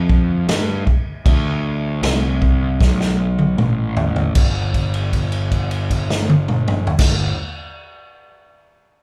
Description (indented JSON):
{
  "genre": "blues rock power trio and southern rock",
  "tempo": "78 BPM",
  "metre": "4/4",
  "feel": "straight",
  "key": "G mixolydian",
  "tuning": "A4 = 440 Hz",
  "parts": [
    { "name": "fuzz picked electric bass", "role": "bass", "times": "0.0-7.3 s", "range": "G1 to G2", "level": "-22 LUFS", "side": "equal", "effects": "overdrive" },
    { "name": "vintage drum kit", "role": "drums", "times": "0.1-7.2 s", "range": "crash cymbal, kick drum, snare drum, toms", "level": "-20 LUFS", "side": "equal", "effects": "none" }
  ],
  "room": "moderate large studio reverb, RT60 0.8 s",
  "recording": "band playing live in one room",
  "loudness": "-18 LUFS",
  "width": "mono",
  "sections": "0.0-4.3 A section; 4.3-7.4 B section",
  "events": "drum fill 2.8-4.3; held note 4.3-7.0",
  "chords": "none"
}